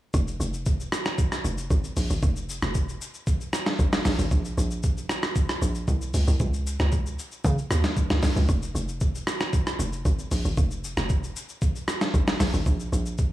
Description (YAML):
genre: amapiano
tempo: 115 BPM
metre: 4/4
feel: straight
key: F minor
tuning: A4 = 440 Hz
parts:
  - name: hollow log drum bass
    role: bass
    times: 0.1-13.3 s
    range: F1 to Db3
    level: -26 LUFS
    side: equal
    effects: none
  - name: boom bap sampler-style drum kit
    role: drums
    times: 0.1-13.3 s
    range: hi-hat, kick drum, rim click, shaker, snare drum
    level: -25 LUFS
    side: equal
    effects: none
room: little or no reverb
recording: echo-heavy mix, small room ambience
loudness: -23 LUFS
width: side -15 dB against mid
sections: 0.1-13.3 A section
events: drop 0.1-13.3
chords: none